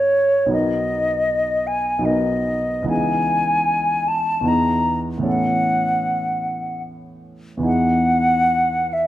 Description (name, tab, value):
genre	classical, impressionist duo for flute and grand piano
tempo	76 BPM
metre	3/4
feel	uneven beats, rubato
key	B mixolydian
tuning	A4 = 440 Hz
part	mellow silver concert flute	melody	0.0-9.1 s	C#5 to A#5	-19 LUFS	left 1 dB	none
part	warm baby grand piano	accompaniment	0.0-9.1 s	G#1 to A#4	-22 LUFS	equal	none
room	moderate recital hall reverb, RT60 1.3 s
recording	minimal, uncompressed stereo recording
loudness	-17 LUFS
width	side -14 dB against mid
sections	0.0-9.1 A section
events	none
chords	0.0 G#m9; 0.5 Bmaj7; 2.9 C#m9; 4.5 Emaj7#11; 5.3 A69; 7.7 Emaj7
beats	| 0.54 1.29 2.06 | 2.90 3.69 4.48 | 5.26 6.06 6.86 | 7.66 8.51